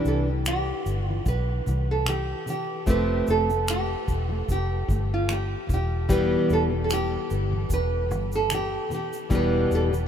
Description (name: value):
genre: acoustic pop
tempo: 75 BPM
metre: 4/4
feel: swing 55% on 16ths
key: unclear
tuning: A4 = 435 Hz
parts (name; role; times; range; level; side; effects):
- nylon-string guitar; melody; 0.0-9.8 s; F4 to B4; -28 LUFS; right 3 dB; none
- fingerpicked plugged-in steel-string acoustic guitar; accompaniment; 0.0-10.1 s; E2 to G4; -28 LUFS; left 2 dB; none
- vintage muted fingered electric bass; bass; 0.1-10.1 s; E1 to C2; -27 LUFS; equal; none
- natural country drum kit; drums; 0.1-10.1 s; finger snaps, kick drum, shaker; -31 LUFS; equal; none
room: moderate huge ambient reverb, RT60 8.2 s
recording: in a vast, echoing space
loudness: -22 LUFS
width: side -8 dB against mid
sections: 0.0-10.1 A section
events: none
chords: 0.0 C; 2.9 Fadd9; 5.7 Em